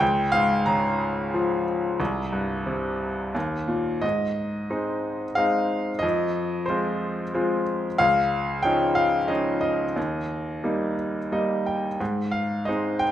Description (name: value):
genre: classical, lyrical solo piano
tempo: 90 BPM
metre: 3/4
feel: rubato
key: Ab major from 4.0 s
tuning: A4 = 441 Hz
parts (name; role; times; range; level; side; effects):
- bright grand piano; solo; 0.0-13.1 s; C2 to Bb5; -22 LUFS; equal; none
room: moderate recital hall reverb, RT60 1.3 s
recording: minimal, uncompressed stereo recording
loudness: -22 LUFS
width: side -11 dB against mid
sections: 0.0-4.0 A section; 4.0-13.1 B section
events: grand piano fill 11.0-12.0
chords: 0.0 Db6; 2.0 C5; 3.4 Eb5; 4.0 Ab; 6.0 Fm; 8.0 Dbadd9; 10.0 Eb; 12.0 Ab